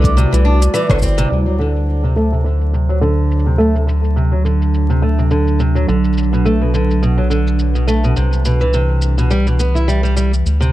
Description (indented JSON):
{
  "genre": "folktronica",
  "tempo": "105 BPM",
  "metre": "4/4",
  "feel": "swing 56% on 16ths",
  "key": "D mixolydian",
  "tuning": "A4 = 440 Hz",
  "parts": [
    { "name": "vibraphone with soft mallets", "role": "second line", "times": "0.0-1.3 s", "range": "D5 to D6", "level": "-26 LUFS", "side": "right 2 dB", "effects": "tape echo" },
    { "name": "warbly tape-like pad", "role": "sustained chords", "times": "0.0-10.7 s", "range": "D3 to D5", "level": "-22 LUFS", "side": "right 3 dB", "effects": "chorus, built-in reverb" },
    { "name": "picked old ladder-braced acoustic guitar", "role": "arpeggios", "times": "0.0-10.7 s", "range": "B2 to E4", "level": "-18 LUFS", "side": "equal", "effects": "low-pass filter, ping-pong delay" },
    { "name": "round analog bass", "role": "bass", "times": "0.0-10.7 s", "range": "G1 to D2", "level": "-15 LUFS", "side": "equal", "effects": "none" },
    { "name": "electronic kick drum", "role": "drums", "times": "0.0-1.2 s", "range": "none", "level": "-16 LUFS", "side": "equal", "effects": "overdrive" },
    { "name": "organic electronic drum kit", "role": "drums", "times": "0.0-10.7 s", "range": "hi-hat, rim click, shaker", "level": "-28 LUFS", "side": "left 1 dB", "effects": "overdrive, low-pass filter on hats, low-pass filter on perc, low-pass filter on snare" }
  ],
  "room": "light reverb",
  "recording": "dark, warm production, vinyl crackle",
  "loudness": "-13 LUFS",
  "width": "side -15 dB against mid",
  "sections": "0.0-1.3 A section; 1.3-10.7 B section",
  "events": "band accent 0.9; filter sweep on steel-string acoustic guitar 1.3-10.7",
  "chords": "0.2 Cadd9; 1.3 D7; 5.9 Bm7; 8.2 Cmaj7",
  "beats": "0.17 0.74 | 1.31 1.88 2.46 3.03 | 3.60 4.17 4.74 5.31 | 5.88 6.46 7.03 7.60 | 8.17 8.74 9.31 9.88 | 10.46"
}